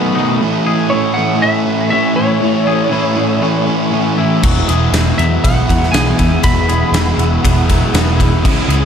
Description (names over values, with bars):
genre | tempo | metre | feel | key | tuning
rock, shoegaze and dream pop | 119 BPM | 4/4 | straight | E major | A4 = 441 Hz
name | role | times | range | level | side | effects
ethereal airy pad | sustained chords | 0.0-8.8 s | A3 to C#6 | -23 LUFS | left 1 dB | ensemble chorus, built-in reverb
twangy electric guitar | arpeggios | 0.0-8.8 s | F#3 to G#4 | -23 LUFS | left 4 dB | wide subtle chorus, tape echo
overdriven semi-hollow guitar | riff | 0.0-8.8 s | E2 to F#4 | -18 LUFS | right 11 dB | reverse reverb
thick fuzz guitar | riff | 0.0-8.8 s | E2 to C#4 | -18 LUFS | left 9 dB | distortion, lush chorus
lightly driven lead guitar | melody | 0.9-7.9 s | C#5 to B5 | -19 LUFS | equal | tape echo
vintage muted picked electric bass | bass | 4.4-8.8 s | E1 to E2 | -16 LUFS | equal | none
gated 80s drum kit | drums | 4.4-8.8 s | crash cymbal, kick drum, ride cymbal, snare drum | -16 LUFS | equal | none
room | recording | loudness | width
light reverb, small room ambience | none | -11 LUFS | side -8 dB against mid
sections
0.0-8.8 A section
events
none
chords
0.4 Amaj7; 4.4 Eadd9